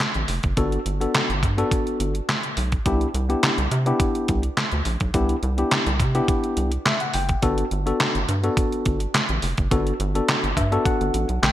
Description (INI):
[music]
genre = early-eighties boogie funk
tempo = 105 BPM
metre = 4/4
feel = straight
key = C lydian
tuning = A4 = 440 Hz
[part]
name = detuned 8-bit digital drum machine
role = drums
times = 0.0-11.5 s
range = handclaps, hi-hat, kick drum, snare drum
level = -23 LUFS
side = equal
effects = gated reverb
[part]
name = rubbery square bass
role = bass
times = 0.2-11.5 s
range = F1 to C3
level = -24 LUFS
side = equal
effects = none
[part]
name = tine electric piano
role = accompaniment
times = 0.6-11.5 s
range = B3 to G5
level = -25 LUFS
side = left 2 dB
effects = none
[sound]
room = light reverb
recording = bright 1980s-style digital production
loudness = -20 LUFS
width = side -13 dB against mid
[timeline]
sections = 0.0-11.5 A section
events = tine electric piano fill 6.6-7.4, 10.3-11.5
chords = 0.0 Gmaj9; 2.9 Cmaj9; 7.4 Gmaj9